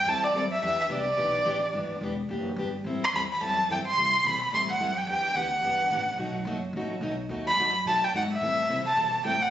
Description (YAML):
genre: acoustic string swing (jazz manouche)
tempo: 216 BPM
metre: 4/4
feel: swing 56% on 8ths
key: E minor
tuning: A4 = 441 Hz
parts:
  - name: warm erhu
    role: melody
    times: 0.0-9.5 s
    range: D5 to C6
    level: -24 LUFS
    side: equal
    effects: none
  - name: upright bass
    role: bass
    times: 0.0-9.5 s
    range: E1 to C3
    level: -36 LUFS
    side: equal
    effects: none
  - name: picked plugged-in steel-string acoustic guitar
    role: accompaniment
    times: 0.1-9.4 s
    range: B2 to A4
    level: -34 LUFS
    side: left 2 dB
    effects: none
room: moderate studio reverb, RT60 0.6 s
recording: recorded on a phone in the room, studio reverb, nothing above 7.8 kHz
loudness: -24 LUFS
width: side -11 dB against mid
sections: 0.0-9.5 A section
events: none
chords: 0.0 Am7; 0.6 Em7; 2.9 Am7; 5.1 Em7; 6.2 B7; 8.4 Am7